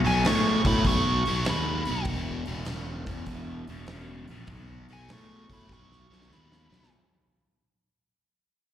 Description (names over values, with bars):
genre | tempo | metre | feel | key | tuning
blues rock power trio and southern rock | 99 BPM | 4/4 | swing 67% on 8ths | unclear | A4 = 440 Hz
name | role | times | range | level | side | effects
biting overdriven guitar | riff | 0.0-6.9 s | E2 to G#3 | -30 LUFS | left 1 dB | phaser, slapback echo
smooth overdriven lead guitar | melody | 0.1-6.9 s | G#5 to C#6 | -29 LUFS | right 1 dB | slapback echo
fuzz fingered electric bass | bass | 0.1-6.9 s | E1 to A2 | -30 LUFS | equal | overdrive
big rock drum kit | drums | 0.1-6.9 s | hi-hat, kick drum, snare drum | -31 LUFS | equal | none
room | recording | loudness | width
small room ambience | live gig heard through the venue's PA, recital hall reverb | -24 LUFS | side -11 dB against mid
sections
0.0-6.9 A section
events
fade-out 0.0-6.9; drum fill 5.7-6.9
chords
0.0 B7; 2.1 E5; 4.5 B7